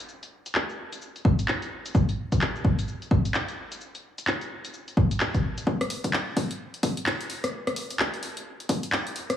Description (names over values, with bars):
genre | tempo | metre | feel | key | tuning
UK garage | 129 BPM | 4/4 | swing 61% on 16ths | none | none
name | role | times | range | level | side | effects
house drum kit | drums | 0.0-9.4 s | handclaps, hi-hat, rim click, shaker | -29 LUFS | equal | low-pass filter on hats, low-pass filter on perc, low-pass filter on snare
electronic kick drum | drums | 1.2-8.8 s | none | -24 LUFS | equal | high-pass filter on kick
room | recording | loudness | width
moderate plate reverb, RT60 2.0 s | heavily compressed radio sound, small room reverb | -24 LUFS | side -10 dB against mid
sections
0.0-5.7 A section; 5.7-9.4 B section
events
build-up 5.7-9.4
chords
none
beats
| 0.09 0.55 1.02 1.48 | 1.95 2.41 2.88 3.34 | 3.81 4.27 4.74 5.20 | 5.67 6.13 6.60 7.06 | 7.53 7.99 8.46 8.92